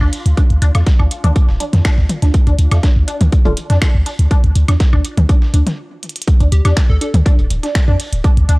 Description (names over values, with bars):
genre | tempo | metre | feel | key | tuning
minimal techno | 122 BPM | 4/4 | straight | D minor | A4 = 439 Hz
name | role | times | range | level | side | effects
resonant blip pluck | riff | 0.0-8.6 s | D4 | -25 LUFS | equal | phaser, lush chorus, sidechain pumping, analog delay
punchy sub bass | bass | 0.0-8.6 s | D1 to F2 | -12 LUFS | equal | sidechain pumping
bubbling stepped-filter texture | texture | 0.0-5.8 s | F4 | -39 LUFS | left 1 dB | chorus, built-in reverb, sidechain pumping
dusty soul sampler-style drum kit | drums | 0.1-8.6 s | hi-hat, snare drum | -33 LUFS | equal | overdrive, sidechain pumping on hats, high-pass filter on hats, high-pass filter on snare
minimal click drum kit | drums | 0.1-8.6 s | finger snaps, hi-hat | -25 LUFS | equal | none
electronic kick drum | drums | 0.4-8.3 s | none | -12 LUFS | equal | overdrive
filtered dub chord stab | stabs | 0.7-3.5 s | A3 to F4 | -26 LUFS | left 1 dB | phaser, wide subtle chorus, tape echo
electronic woodblock and toms | percussion | 0.7-7.2 s | none | -20 LUFS | left 1 dB | overdrive, tape echo
plucky unison lead | melody | 6.5-7.1 s | G4 to A4 | -28 LUFS | left 1 dB | vintage 12-bit sampler grit, tape echo
room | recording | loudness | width
little or no reverb | dry, gritty hardware recording, cassette tape | -11 LUFS | side -24 dB against mid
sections
0.0-6.3 A section; 6.3-8.6 B section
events
break 5.8-6.3; drum fill 6.0; drop 6.3-8.6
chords
0.0 Dm; 6.3 N.C.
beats
| 0.37 0.87 1.36 1.85 | 2.34 2.83 3.33 3.82 | 4.31 4.80 5.29 5.78 | 6.28 6.77 7.26 7.75 | 8.24